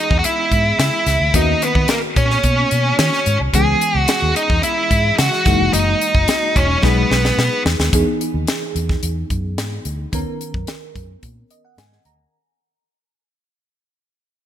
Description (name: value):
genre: polished 1980s jazz-funk pop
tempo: 109 BPM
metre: 4/4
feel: straight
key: B major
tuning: A4 = 440 Hz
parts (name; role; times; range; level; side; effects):
- octave-fuzz lead guitar; melody; 0.0-7.6 s; A#3 to G#4; -17 LUFS; right 1 dB; distortion
- bell-like FM electric piano; accompaniment; 0.0-12.3 s; D#3 to A#5; -24 LUFS; left 2 dB; tremolo, wide subtle chorus
- vintage muted fingered electric bass; bass; 0.1-12.2 s; E1 to D#3; -20 LUFS; equal; none
- tight funk drum kit; drums; 0.1-12.2 s; hi-hat, kick drum, snare drum; -20 LUFS; equal; none
room: light reverb, small room ambience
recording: bright 1980s-style digital production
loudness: -14 LUFS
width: side -10 dB against mid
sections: 0.0-7.9 A section; 7.9-12.3 B section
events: drum fill 6.8-7.9; fade-out 7.9-12.3; FM electric piano fill 11.2-12.3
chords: 0.0 C#m7; 1.3 Bmaj9/D#; 3.5 C#m7; 5.5 F#13; 6.8 B6; 7.9 Emaj7; 10.1 Bmaj9/D#